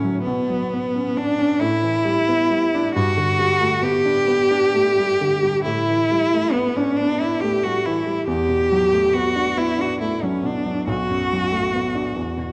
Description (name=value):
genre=classical, impressionist duo for cello and grand piano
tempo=46 BPM (dotted quarters)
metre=6/8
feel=rubato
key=unclear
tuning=A4 = 442 Hz
part: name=rich cello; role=melody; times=0.0-12.5 s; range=B3 to G4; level=-22 LUFS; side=equal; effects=none
part: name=dark grand piano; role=accompaniment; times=0.0-12.5 s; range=B1 to E4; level=-26 LUFS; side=equal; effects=none
room=wet recital hall reverb, RT60 1.5 s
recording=dark, warm production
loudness=-20 LUFS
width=mono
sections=0.0-12.5 A section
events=none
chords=0.2 Bmadd9; 1.6 A11; 2.9 Gadd9; 5.6 A9sus4; 8.3 Em11; 10.9 Bm7